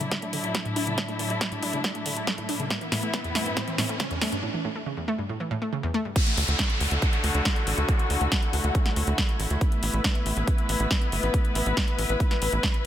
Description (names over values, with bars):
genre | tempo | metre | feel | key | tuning
uplifting trance | 139 BPM | 4/4 | straight | D major | A4 = 439 Hz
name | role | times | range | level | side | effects
muted studio string section | sustained chords | 0.0-12.9 s | A2 to B4 | -30 LUFS | left 2 dB | sidechain pumping
analog pluck | arpeggios | 0.0-6.2 s | E2 to D4 | -31 LUFS | equal | chorus, sidechain pumping, tape echo
big-room dance drum kit | drums | 0.0-12.8 s | crash cymbal, hi-hat, snare drum | -30 LUFS | equal | none
riser and downlifter | sound effects | 0.0-9.6 s | none | -33 LUFS | right 1 dB | none
electronic kick drum | drums | 0.1-12.7 s | none | -25 LUFS | equal | high-pass filter on kick
tight sequencer bass | bass | 6.4-12.6 s | G1 to D2 | -26 LUFS | equal | tube saturation, sidechain pumping
room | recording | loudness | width
digital ambience | none | -23 LUFS | side -11 dB against mid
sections
0.0-6.2 A section; 6.2-12.9 B section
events
build-up 0.0-6.2; drum fill 0.0-4.4; riser 0.0-4.4; filter sweep on synth arpeggio sound 0.0-6.2; break 4.4-6.2; drop 6.2-12.9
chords
0.0 Dadd9; 2.7 Asus2; 6.2 Dadd9; 9.6 Asus2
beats
0.12 0.55 | 0.98 1.41 1.84 2.27 | 2.71 3.14 3.57 4.00 | 4.43 4.86 5.29 5.73 | 6.16 6.59 7.02 7.45 | 7.88 8.32 8.75 9.18 | 9.61 10.04 10.47 10.91 | 11.34 11.77 12.20 12.63